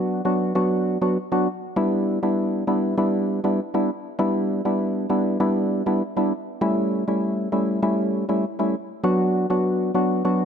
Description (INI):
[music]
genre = dancehall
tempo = 99 BPM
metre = 4/4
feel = straight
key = unclear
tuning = A4 = 440 Hz
[part]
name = percussive organ stab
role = solo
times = 0.0-10.4 s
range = F#3 to F#4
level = -20 LUFS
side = equal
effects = chorus
[sound]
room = light reverb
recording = none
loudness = -20 LUFS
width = side -7 dB against mid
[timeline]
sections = 0.0-10.4 A section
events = none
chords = 0.0 Bm; 1.8 Em7; 6.6 A7; 9.0 Bm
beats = 0.55 1.16 | 1.77 2.37 2.98 3.58 | 4.19 4.80 5.40 6.01 | 6.61 7.22 7.83 8.43 | 9.04 9.64 10.25